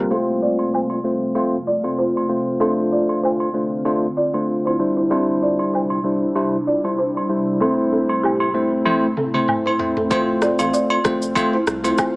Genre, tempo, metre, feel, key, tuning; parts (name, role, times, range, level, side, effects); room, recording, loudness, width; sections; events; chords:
afrobeats; 96 BPM; 4/4; swing 55% on 16ths; F major; A4 = 440 Hz
bell-like tine electric piano; accompaniment; 0.0-12.2 s; G3 to C5; -20 LUFS; left 1 dB
ethereal airy pad; sustained chords; 0.0-12.2 s; D2 to F4; -28 LUFS; equal; ensemble chorus, built-in reverb
balafon; riff; 0.0-12.0 s; C4 to F5; -23 LUFS; right 1 dB; digital delay
round analog bass; bass; 0.0, 10.1-11.9 s; F1 to C2; -37 LUFS; equal
agogo bells and woodblock; percussion; 0.1-12.1 s; -25 LUFS; right 1 dB
afro-pop drum kit; drums; 8.9-12.1 s; kick drum, rim click, shaker, toms; -26 LUFS; equal
light reverb; low-pass filter, small speaker sound; -17 LUFS; side -25 dB against mid
0.1-10.1 A section; 10.1-12.2 B section
filter sweep 0.1-10.1; drum fill 8.9-10.1
0.1 F; 2.6 Dm7; 4.8 Cadd9; 7.6 Am; 10.1 F